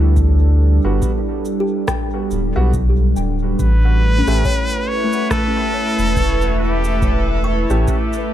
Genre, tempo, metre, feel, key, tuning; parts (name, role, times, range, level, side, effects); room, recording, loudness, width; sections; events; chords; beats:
ambient dub; 70 BPM; 4/4; swing 58% on 16ths; A mixolydian; A4 = 440 Hz
warbly tape-like pad; sustained chords; 0.0-8.3 s; G3 to E5; -22 LUFS; right 1 dB; chorus, built-in reverb
kalimba; arpeggios; 0.0-8.3 s; A3 to C#6; -27 LUFS; left 4 dB; dub echo
soft dub sub bass; bass; 0.0-7.9 s; D1 to D2; -15 LUFS; equal
electronic kick drum; drums; 0.2-8.1 s; -22 LUFS; equal
electronic shaker and rim click; drums; 0.2-8.3 s; -28 LUFS; right 1 dB; dub echo
clear upright piano; stabs; 0.8-8.0 s; G3 to G4; -29 LUFS; right 1 dB; dub echo
trumpet with straight mute; melody; 3.6-7.4 s; G4 to C#5; -22 LUFS; equal; dub echo
bubbling stepped-filter texture; texture; 4.0-8.3 s; B4; -27 LUFS; right 4 dB; chorus, built-in reverb
little or no reverb; echo-heavy mix; -14 LUFS; side -12 dB against mid
0.0-3.6 A section; 3.6-8.3 B section
0.0 G; 3.6 A7
| 0.17 1.02 1.88 2.74 | 3.60 4.45 5.31 6.17 | 7.02 7.88